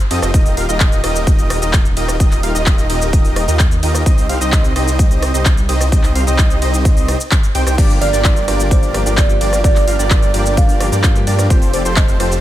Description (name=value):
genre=EDM, festival progressive house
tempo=129 BPM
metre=4/4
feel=straight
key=G minor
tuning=A4 = 440 Hz
part: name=big-room dance drum kit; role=drums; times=0.0-12.4 s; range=crash cymbal, handclaps, hi-hat, ride cymbal, rim click, shaker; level=-21 LUFS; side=equal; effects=none
part: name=wide unison lead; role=arpeggios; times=0.1-12.4 s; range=C5 to G5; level=-24 LUFS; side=right 1 dB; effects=sidechain pumping, digital delay
part: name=big supersaw lead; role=riff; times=0.1-12.4 s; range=C4 to G5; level=-21 LUFS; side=equal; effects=sidechain pumping, digital delay
part: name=wide detuned saw bass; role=bass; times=0.1-12.4 s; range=Eb1 to G2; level=-18 LUFS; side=equal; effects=chorus, sidechain pumping
part: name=electronic kick drum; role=drums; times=0.3-12.1 s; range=none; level=-13 LUFS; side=equal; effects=none
part: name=bright concert grand piano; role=accompaniment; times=7.8-12.4 s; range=F3 to G4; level=-25 LUFS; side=left 2 dB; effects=sidechain pumping
part: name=kalimba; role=melody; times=8.0-12.4 s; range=C5 to F5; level=-22 LUFS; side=right 4 dB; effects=digital delay
room=little or no reverb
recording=none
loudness=-12 LUFS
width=side -13 dB against mid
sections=0.0-12.4 A section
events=none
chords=0.3 Ebadd9; 4.1 Cm; 7.8 Gm7; 11.5 Fadd9